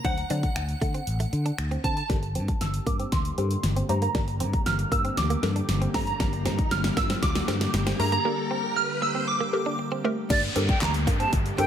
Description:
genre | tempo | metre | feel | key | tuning
dance-pop | 117 BPM | 4/4 | straight | G minor | A4 = 440 Hz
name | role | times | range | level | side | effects
shimmering bell with halo | melody | 0.0-9.8 s | F#5 to F6 | -30 LUFS | right 2 dB | ensemble chorus, tremolo, low-pass filter, digital delay
hollow square pluck | accompaniment | 0.0-11.7 s | F#3 to D5 | -31 LUFS | left 2 dB | chorus, sidechain pumping, low-pass filter
direct-recorded clean electric guitar | riff | 0.0-11.7 s | A3 to D4 | -35 LUFS | right 4 dB | analog chorus, low-pass filter
picked electric bass | bass | 0.0-11.7 s | G1 to D3 | -28 LUFS | equal | sidechain pumping
pop drum kit | drums | 0.0-11.7 s | crash cymbal, finger snaps, handclaps, hi-hat, kick drum, snare drum | -28 LUFS | equal | none
airy breathy pad | sustained chords | 2.7-11.7 s | D3 to G4 | -34 LUFS | left 1 dB | chorus, sidechain pumping, low-pass filter
riser and downlifter | sound effects | 3.9-11.7 s | none | -36 LUFS | left 1 dB | none
bright silver concert flute | melody | 10.3-11.7 s | D5 to Bb5 | -28 LUFS | right 1 dB | sidechain pumping, digital delay
room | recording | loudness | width
light reverb | none | -23 LUFS | side -9 dB against mid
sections
0.0-2.1 A section; 2.1-10.3 B section; 10.3-11.7 C section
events
build-up 2.1-10.3; drum fill 2.1-8.3; filter sweep 2.1-10.3; riser 3.9-10.3; drop 10.3-11.7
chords
0.0 D7; 2.1 Gmadd9

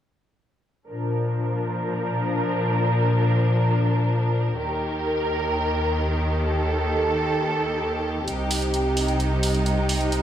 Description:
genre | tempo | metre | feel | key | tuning
EDM, festival progressive house | free time | none | none | Bb major | A4 = 440 Hz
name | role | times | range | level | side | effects
clear symphonic string section | sustained chords | 0.9-10.2 s | C2 to Bb4 | -21 LUFS | equal | low-pass filter
electronic hi-hat | drums | 8.3-10.2 s | none | -29 LUFS | right 3 dB | none
room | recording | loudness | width
light reverb, studio ambience | played on a big sound system in a bare room, stone room reverb | -21 LUFS | side -10 dB against mid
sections
0.9-10.2 A section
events
none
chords
0.9 Bb; 4.6 Eb; 8.3 Cm

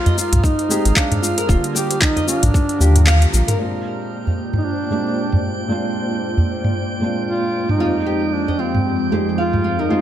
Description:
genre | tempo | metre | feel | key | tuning
organic downtempo | 114 BPM | 4/4 | swing 57% on 16ths | unclear | A4 = 437 Hz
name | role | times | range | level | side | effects
mellow duduk | melody | 0.0-10.0 s | C4 to G4 | -23 LUFS | right 1 dB | ping-pong delay
felt-muted upright piano | accompaniment | 0.0-10.0 s | F2 to Ab4 | -25 LUFS | equal | vintage 12-bit sampler grit, sidechain pumping, ping-pong delay
ethereal airy pad | sustained chords | 0.1-10.0 s | F3 to Eb6 | -26 LUFS | right 2 dB | ensemble chorus, built-in reverb, sidechain pumping
drifting glass-harmonics texture | texture | 0.0-10.0 s | Bb4 to G5 | -31 LUFS | right 5 dB | chorus, built-in reverb
flamenco guitar | arpeggios | 0.1-3.6, 7.8-10.0 s | F4 to F5 | -25 LUFS | left 1 dB | ping-pong delay
organic electronic drum kit | drums | 0.1-9.6 s | cabasa, handclaps, hi-hat, toms | -21 LUFS | equal | low-pass filter on perc, low-pass filter on hats, low-pass filter on snare, low-pass filter on toms, low-pass filter on room
udu | percussion | 0.1-9.6 s | none | -20 LUFS | right 1 dB | none
warm sub bass | bass | 0.3-3.4 s | Eb1 to Eb2 | -13 LUFS | equal | none
electronic kick drum | drums | 0.4-2.7 s | none | -18 LUFS | equal | none
room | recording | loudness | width
light reverb | none | -16 LUFS | side -11 dB against mid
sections
0.0-3.6 A section; 3.6-10.0 B section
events
kick drops out 3.1-3.6; band accent 3.1; filter sweep on ambient pad 3.6-10.0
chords
0.0 Fm7; 1.5 Ebmaj7; 3.6 Bb7; 7.8 Fm7

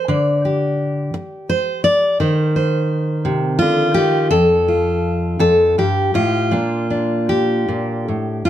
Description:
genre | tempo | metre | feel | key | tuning
folk, solo fingerstyle acoustic guitar | 56 BPM (dotted quarters) | 6/8 | uneven beats, rubato | Bb major | A4 = 436 Hz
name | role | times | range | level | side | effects
fingerpicked steel-string acoustic guitar | solo | 0.0-8.5 s | F2 to D5 | -15 LUFS | equal | none
room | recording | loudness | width
light reverb | close, detailed microphones | -15 LUFS | side -11 dB against mid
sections
0.0-6.5 A section; 6.5-8.5 B section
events
none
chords
0.1 G5/D; 2.2 Cm/Eb; 4.3 F; 6.5 Bb

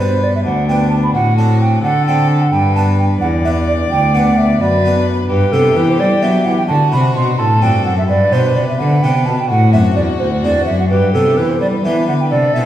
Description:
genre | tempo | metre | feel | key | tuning
classical, baroque-style sonata movement with continuo | 86 BPM (dotted quarters) | 12/8 | straight | G major from 5.3 s | A4 = 440 Hz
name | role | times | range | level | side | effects
clear violin | melody | 0.0-12.7 s | D4 to D5 | -23 LUFS | left 5 dB | none
mellow hollow silver concert flute | second line | 0.0-12.7 s | A4 to C6 | -16 LUFS | right 3 dB | none
harpsichord | accompaniment | 0.0-12.7 s | D2 to B4 | -20 LUFS | left 2 dB | none
clear cello | bass | 0.0-12.7 s | D2 to G3 | -15 LUFS | equal | none
room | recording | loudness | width
wet recital hall reverb, RT60 1.6 s | heard from further back in the room | -11 LUFS | side -12 dB against mid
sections
0.0-12.7 A section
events
none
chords
0.0 G; 1.1 D7/A; 2.5 G; 6.7 D7; 8.1 G; 9.5 D7; 10.9 G

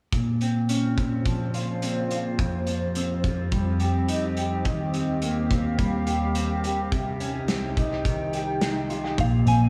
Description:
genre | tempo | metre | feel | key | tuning
dream pop | 106 BPM | 4/4 | straight | Bb dorian | A4 = 441 Hz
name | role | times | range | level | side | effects
warbly tape-like pad | sustained chords | 0.9-9.7 s | C2 to G5 | -31 LUFS | equal | chorus, built-in reverb, phaser
mellow electric guitar | arpeggios | 0.1-9.7 s | F2 to G4 | -28 LUFS | equal | lush chorus, dub echo
loose indie drum kit | drums | 0.1-9.6 s | hi-hat, kick drum, snare drum | -31 LUFS | equal | none
soft synth bell | melody | 9.2-9.7 s | F5 to Ab5 | -28 LUFS | equal | chorus, phaser
vintage muted picked electric bass | bass | 9.2-9.7 s | Bb1 | -24 LUFS | equal | none
room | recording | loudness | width
moderate plate reverb, RT60 1.9 s, studio ambience | echo-heavy mix, small room ambience | -25 LUFS | mono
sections
0.1-9.2 A section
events
none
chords
0.1 Bbmadd9; 2.4 Fsus2; 4.7 Eb6; 6.9 Cm; 9.2 Bbmadd9

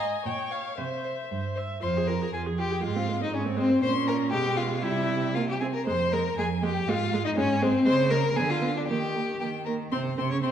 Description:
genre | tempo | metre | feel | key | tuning
quick classical-period movement for string quartet | 118 BPM | 2/4 | straight | F minor | A4 = 440 Hz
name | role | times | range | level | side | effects
rich violin | melody | 0.0-10.5 s | C5 to Db6 | -34 LUFS | left 9 dB | none
warm violin | second line | 0.0-10.5 s | C4 to Db5 | -27 LUFS | left 2 dB | none
rich viola | accompaniment | 0.0-10.5 s | G3 to E5 | -31 LUFS | right 3 dB | none
clear cello | bass | 0.0-10.5 s | F2 to Eb3 | -30 LUFS | right 5 dB | none
room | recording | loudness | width
wet recital hall reverb, RT60 1.5 s | dark, warm production | -24 LUFS | side -9 dB against mid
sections
0.0-1.8 A section; 1.8-9.9 B section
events
none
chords
0.2 Gdim/Bb; 0.8 C; 1.8 Fm; 2.8 Ab6; 3.8 Bbm; 4.3 G7b9/B; 4.8 C; 5.9 Fm; 6.9 Ab6; 7.9 Bbm7/Db; 8.4 Ddim7; 8.9 Eb; 9.9 N.C.

